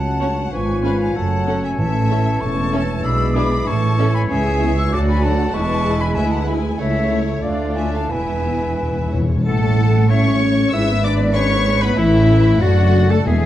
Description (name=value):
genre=quick classical-period movement for symphony orchestra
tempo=87-99 BPM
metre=2/4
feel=rubato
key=A major from 4.3 s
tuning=A4 = 440 Hz
part: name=bright clarinet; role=second line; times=0.0-13.5 s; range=D4 to E5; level=-27 LUFS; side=left 1 dB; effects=none
part: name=clear oboe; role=second line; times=0.0-13.5 s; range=E4 to F#5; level=-31 LUFS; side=equal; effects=none
part: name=mellow concert flute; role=second line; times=0.0-13.5 s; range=B4 to E6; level=-25 LUFS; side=left 2 dB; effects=none
part: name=rich studio violin section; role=second line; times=0.0-13.5 s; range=E4 to C#6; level=-29 LUFS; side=left 2 dB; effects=none
part: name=mellow bassoon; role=accompaniment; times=0.0-9.1 s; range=E3 to B3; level=-28 LUFS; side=right 1 dB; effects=none
part: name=mellow French horn section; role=sustained chords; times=0.0-13.5 s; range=E3 to E#4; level=-23 LUFS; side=left 3 dB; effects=none
part: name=rich studio double bass section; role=bass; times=0.0-13.5 s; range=E1 to D2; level=-21 LUFS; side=right 2 dB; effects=none
part: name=warm studio cello section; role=bass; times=0.0-13.5 s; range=C#2 to B2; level=-22 LUFS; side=right 1 dB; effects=none
part: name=dark studio violin section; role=melody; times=0.2-13.5 s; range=A4 to E6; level=-28 LUFS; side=left 4 dB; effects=none
part: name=rich studio viola section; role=accompaniment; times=0.2-13.5 s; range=E3 to C#5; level=-25 LUFS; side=equal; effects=none
part: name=timpani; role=percussion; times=1.8-2.7, 8.1-9.4, 13.3-13.5 s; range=E2 to A2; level=-23 LUFS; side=left 1 dB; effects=none
room=wet recital hall reverb, RT60 1.4 s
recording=dark, warm production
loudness=-15 LUFS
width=side -13 dB against mid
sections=0.0-9.5 A section; 9.5-13.5 B section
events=timpani fill 8.1-9.5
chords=0.0 F#m; 0.5 C#7/G#; 1.2 F#m; 1.8 A; 3.0 E7/B; 3.7 A; 4.3 C#m; 4.9 D; 5.5 E; 6.2 E7/D; 6.8 A/C#; 7.4 Dm; 8.1 E; 9.5 A; 10.7 E7/G#; 12.0 A; 12.6 D/F#